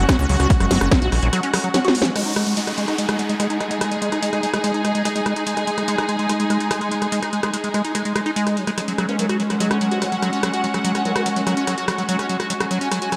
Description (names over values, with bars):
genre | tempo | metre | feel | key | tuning
psychedelic trance | 145 BPM | 4/4 | straight | unclear | A4 = 441 Hz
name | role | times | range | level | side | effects
evolving wavetable pad | sustained chords | 0.0-13.2 s | G#3 | -30 LUFS | equal | ensemble chorus, built-in reverb, sidechain pumping
liquid acid bass | riff | 0.0-13.2 s | E#3 to F#4 | -26 LUFS | equal | chorus, sidechain pumping, dub echo
fat analog bass | bass | 0.0-1.3 s | F#1 to C#2 | -21 LUFS | equal | none
rich studio string section | texture | 0.0-13.2 s | C#4 to G#5 | -27 LUFS | equal | sidechain pumping
electronic kick drum | drums | 0.1-1.0 s | none | -19 LUFS | equal | none
techno drum kit | drums | 0.1-13.2 s | crash cymbal, hi-hat, rim click, snare drum | -27 LUFS | equal | none
downlifter | sound effects | 2.2-5.5 s | none | -33 LUFS | equal | none
formant-sweep wobble bass | second line | 9.1-11.2 s | D#3 to A#3 | -35 LUFS | equal | analog chorus, sidechain pumping, high-pass filter, dub echo
room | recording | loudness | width
moderate lush hall reverb, RT60 2.0 s | none | -21 LUFS | mono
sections
0.0-2.2 A section; 2.2-13.2 B section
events
drop 0.0-2.2; drum fill 1.7-2.2; band accent 2.0; filter sweep on acid bass 2.2-13.2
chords
0.0 F#5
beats
0.09 | 0.50 0.92 1.33 1.74 | 2.16 2.57 2.98 3.40 | 3.81 4.22 4.64 5.05 | 5.47 5.88 6.29 6.71 | 7.12 7.54 7.95 8.36 | 8.78 9.19 9.61 10.02 | 10.43 10.85 11.26 11.67 | 12.09 12.50 12.91